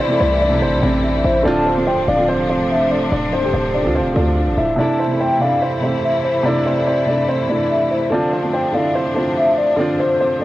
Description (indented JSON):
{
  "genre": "hip hop",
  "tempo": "144 BPM",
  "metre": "4/4",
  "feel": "half-time",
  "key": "A minor",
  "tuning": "A4 = 443 Hz",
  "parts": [
    { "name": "dark baby grand piano", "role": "melody", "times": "0.0-10.4 s", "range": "C4 to E5", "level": "-21 LUFS", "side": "equal", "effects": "cassette tape" },
    { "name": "hollow clarinet-like synth lead", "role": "second line", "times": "0.0-10.4 s", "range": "C5 to A5", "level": "-20 LUFS", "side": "left 2 dB", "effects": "chorus, cassette tape, analog delay" },
    { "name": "dark baby grand piano", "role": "accompaniment", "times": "0.0-10.4 s", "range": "C3 to G4", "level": "-20 LUFS", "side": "right 1 dB", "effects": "cassette tape" },
    { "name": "bright symphonic string section", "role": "sustained chords", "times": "0.0-10.4 s", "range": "C3 to E4", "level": "-24 LUFS", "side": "left 1 dB", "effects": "cassette tape" },
    { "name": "hard-hitting 808-style bass", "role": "bass", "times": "0.2-4.8 s", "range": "C1 to D2", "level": "-22 LUFS", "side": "equal", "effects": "none" }
  ],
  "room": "moderate spring reverb, RT60 1.4 s",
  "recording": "home recording on cassette",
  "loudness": "-15 LUFS",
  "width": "side -15 dB against mid",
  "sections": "0.0-4.8 A section; 4.8-10.4 B section",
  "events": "none",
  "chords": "0.0 Am; 1.5 Dm7; 4.8 Am; 8.1 Dm7"
}